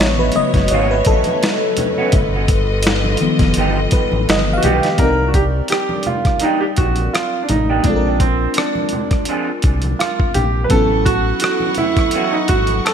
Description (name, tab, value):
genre	R&B, neo-soul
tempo	84 BPM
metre	4/4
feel	swing 55% on 16ths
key	unclear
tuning	A4 = 440 Hz
part	FM electric piano with soft pad layer	accompaniment	0.0-12.9 s	C#3 to F5	-20 LUFS	left 2 dB	chorus
part	rich studio string section	sustained chords	0.0-5.0, 10.7-12.9 s	G3 to C#6	-25 LUFS	left 1 dB	none
part	round analog bass	bass	0.0-12.8 s	F1 to C2	-19 LUFS	equal	none
part	boom bap sampler-style drum kit	drums	0.0-12.9 s	hi-hat, kick drum, rim click, snare drum	-18 LUFS	equal	none
part	congas	percussion	0.2-12.9 s	none	-28 LUFS	right 1 dB	none
part	electric guitar through a small old amp	second line	0.7-12.3 s	Eb3 to Ab4	-23 LUFS	right 5 dB	lush chorus, digital delay
part	clear grand piano	melody	4.6-12.9 s	C4 to B4	-19 LUFS	right 3 dB	lush chorus
room	light reverb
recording	bright 1980s-style digital production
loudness	-14 LUFS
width	side -8 dB against mid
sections	0.0-5.0 A section; 5.0-12.9 B section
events	FM electric piano solo 0.0-5.0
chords	0.0 A69; 2.1 G7b13; 5.0 Cm9; 7.8 Bb9; 10.7 A69